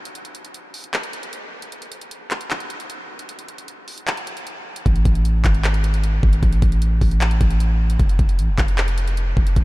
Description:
hip hop, trap; 153 BPM; 4/4; half-time; A4 = 441 Hz
trap drum kit; drums; 0.1-9.6 s; handclaps, hi-hat, kick drum; -22 LUFS; equal
long sustained 808-style bass; bass; 4.9-9.6 s; E1 to A1; -18 LUFS; equal
little or no reverb; -17 LUFS; side -20 dB against mid
0.0-9.6 A section
break 0.0-4.9
| 0.15 0.55 0.94 1.33 | 1.72 2.11 2.50 2.90 | 3.29 3.68 4.07 4.47 | 4.86 5.25 5.64 6.04 | 6.43 6.82 7.21 7.60 | 8.00 8.39 8.78 9.17 | 9.56

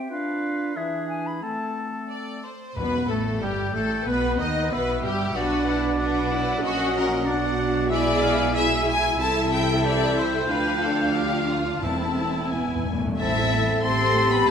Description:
quick classical-period movement for symphony orchestra; 92 BPM; 2/4; straight; A minor from 7.9 s; A4 = 440 Hz
silver concert flute; second line; 0.0-14.5 s; G4 to C6; -32 LUFS; left 1 dB
mellow French horn section; sustained chords; 0.0-14.5 s; E3 to C5; -30 LUFS; left 1 dB
mellow clarinet; second line; 0.1-14.5 s; G3 to F4; -33 LUFS; left 1 dB
warm oboe; second line; 0.1-14.5 s; G#4 to A5; -30 LUFS; equal
clear studio violin section; second line; 2.1-14.5 s; D4 to A5; -29 LUFS; left 2 dB
rich studio violin section; melody; 2.8-14.5 s; G4 to C6; -29 LUFS; left 6 dB
dark studio viola section; accompaniment; 2.8-14.5 s; G3 to B4; -29 LUFS; right 1 dB
rich studio cello section; bass; 2.8-14.5 s; D2 to C4; -31 LUFS; right 4 dB
warm studio double bass section; bass; 2.8-14.5 s; E1 to D#2; -30 LUFS; right 3 dB
timpani; percussion; 2.8-3.7, 11.8-13.1 s; E2; -32 LUFS; left 1 dB
wet scoring stage reverb, RT60 1.7 s; -21 LUFS; side -7 dB against mid
0.0-2.8 A section; 2.8-13.2 B section; 13.2-14.5 A section
timpani fill 12.5-13.2
0.1 Bdim/D; 0.8 E7; 1.4 Am; 2.8 Gadd9; 4.1 B; 4.7 Em/B; 5.4 Bm; 6.6 F#/A#; 7.3 Bm; 7.9 E7/B; 9.2 Am/C; 10.5 Dmadd11; 11.8 Am/E; 12.5 E; 13.2 Am
| 0.11 0.76 | 1.43 2.10 | 2.77 3.42 | 4.07 4.72 | 5.36 6.00 | 6.63 7.27 | 7.91 8.55 | 9.19 9.85 | 10.50 11.16 | 11.84 12.53 | 13.20 13.85 | 14.49

